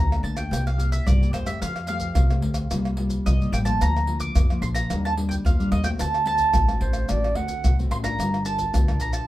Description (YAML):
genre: samba and choro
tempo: 109 BPM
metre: 4/4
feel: straight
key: G minor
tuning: A4 = 440 Hz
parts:
  - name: mandolin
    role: melody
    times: 0.0-9.3 s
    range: C5 to D6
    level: -27 LUFS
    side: right 2 dB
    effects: none
  - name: nylon-string guitar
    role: accompaniment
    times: 0.0-9.3 s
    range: G2 to Bb4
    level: -29 LUFS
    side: left 2 dB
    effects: none
  - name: upright bass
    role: bass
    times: 0.0-9.2 s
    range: G1 to F2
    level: -25 LUFS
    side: equal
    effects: none
  - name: maracas, pandeiro, tamborim and surdo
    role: percussion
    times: 0.1-9.3 s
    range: none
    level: -24 LUFS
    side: equal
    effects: none
  - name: warm clarinet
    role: second line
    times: 6.8-7.8 s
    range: C5 to F#5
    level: -28 LUFS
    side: right 3 dB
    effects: none
room: wet small room reverb, RT60 0.5 s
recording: band playing live in one room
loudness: -20 LUFS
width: side -15 dB against mid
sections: 0.0-9.3 A section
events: none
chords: 0.0 Gmadd9; 0.5 C7; 1.6 Fadd9; 2.7 C7sus4; 3.8 Bb/D; 4.9 Ebmaj7; 6.0 D7; 8.2 Gm7